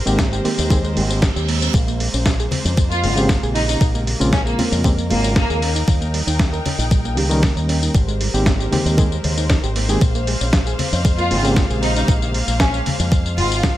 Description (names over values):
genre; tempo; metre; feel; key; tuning
nu-disco, nu disco; 116 BPM; 4/4; straight; Bb dorian; A4 = 440 Hz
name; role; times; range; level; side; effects
rich studio string section; sustained chords; 0.0-13.8 s; Ab3 to G5; -29 LUFS; left 2 dB; sidechain pumping
reed electric piano; accompaniment; 0.1-12.3 s; Db3 to Bb4; -22 LUFS; equal; tremolo, sidechain pumping, tape echo
soft round pluck; arpeggios; 0.1-12.0 s; G3 to Bb4; -29 LUFS; right 4 dB; chorus, sidechain pumping, tape echo
fingered electric bass with an envelope filter; bass; 0.1-13.7 s; Ab1 to F2; -21 LUFS; equal; tube saturation
dusty soul sampler-style drum kit; drums; 0.1-13.7 s; hi-hat, snare drum, tambourine; -24 LUFS; equal; small room ambience
electronic kick drum; drums; 0.2-13.7 s; none; -17 LUFS; equal; overdrive, small room ambience
reverse cymbal; sound effects; 1.0-1.7 s; none; -29 LUFS; right 8 dB; none
congas; percussion; 2.5-13.5 s; none; -26 LUFS; left 3 dB; none
warm studio violin section; melody; 2.9-5.7, 11.2-13.6 s; Bb3 to F4; -23 LUFS; equal; tape echo
room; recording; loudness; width
digital ambience; none; -15 LUFS; side -14 dB against mid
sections
0.0-13.8 A section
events
reverse cymbal 1.0-1.7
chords
0.0 Abmaj9; 1.7 Bbm9; 5.6 Eb7; 7.9 Abmaj9; 10.0 Bbm9